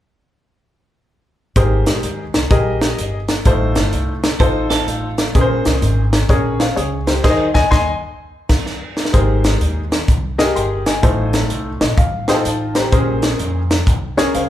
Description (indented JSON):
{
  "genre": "uptempo gospel",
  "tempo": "127 BPM",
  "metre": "4/4",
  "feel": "swing 65% on 8ths",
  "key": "Ab major",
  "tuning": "A4 = 440 Hz",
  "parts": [
    { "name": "clear concert grand piano", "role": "accompaniment", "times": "1.6-14.5 s", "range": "Ab2 to C6", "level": "-19 LUFS", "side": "left 2 dB", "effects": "none" },
    { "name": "upright bass", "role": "bass", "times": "1.6-14.5 s", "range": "G1 to F2", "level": "-20 LUFS", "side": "equal", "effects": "none" },
    { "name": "crisp fusion drum kit", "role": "drums", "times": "1.6-14.5 s", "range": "crash cymbal, hi-hat, kick drum, snare drum", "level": "-17 LUFS", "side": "equal", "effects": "none" },
    { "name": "semi-hollow electric guitar", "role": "second line", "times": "4.4-5.3 s", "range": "A3 to C5", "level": "-24 LUFS", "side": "right 6 dB", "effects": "warbly pitch drift" }
  ],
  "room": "light reverb",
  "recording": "band playing live in one room, lossy compression artefacts",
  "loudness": "-14 LUFS",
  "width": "side -12 dB against mid",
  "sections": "1.6-9.1 A section; 9.1-14.5 B section",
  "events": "band accent 7.2-9.1; grand piano fill 7.7-9.1, 11.5-12.9; drum fill 8.7-9.1",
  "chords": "1.6 Abmaj9; 3.5 F7; 5.3 Bbm9; 7.2 Ab/Eb; 8.2 N.C.; 9.1 Abmaj9; 11.0 F7/A; 12.9 Bbm9"
}